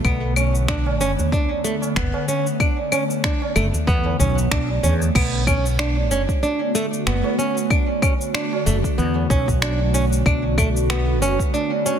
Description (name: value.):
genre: organic downtempo.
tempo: 94 BPM.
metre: 4/4.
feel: swing 56% on 16ths.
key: B minor.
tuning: A4 = 439 Hz.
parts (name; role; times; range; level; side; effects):
ethereal airy pad; sustained chords; 0.0-12.0 s; D3 to F#4; -26 LUFS; equal; ensemble chorus, built-in reverb, phaser, sidechain pumping.
flamenco guitar; arpeggios; 0.0-12.0 s; A3 to D4; -23 LUFS; right 2 dB; digital delay.
mellow fretless electric bass; bass; 0.0-11.4 s; F#1 to E2; -21 LUFS; equal; ensemble chorus, sidechain pumping.
deep house drum kit; drums; 0.0-12.0 s; cabasa, claves, crash cymbal, finger snaps; -26 LUFS; left 3 dB; overdrive, soft clipping on snare.
electronic kick drum; drums; 0.0-11.5 s; none; -22 LUFS; equal; none.
tabla; percussion; 0.4-10.7 s; none; -28 LUFS; right 1 dB; none.
room: light reverb, digital ambience.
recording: dense, heavily limited modern master.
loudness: -18 LUFS.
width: side -8 dB against mid.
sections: 0.0-5.2 A section; 5.2-12.0 B section.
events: none.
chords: 0.0 Bm7.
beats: | 0.05 0.69 1.32 1.96 | 2.60 3.24 3.88 4.52 | 5.16 5.79 6.43 7.07 | 7.71 8.35 8.98 9.62 | 10.26 10.90 11.54.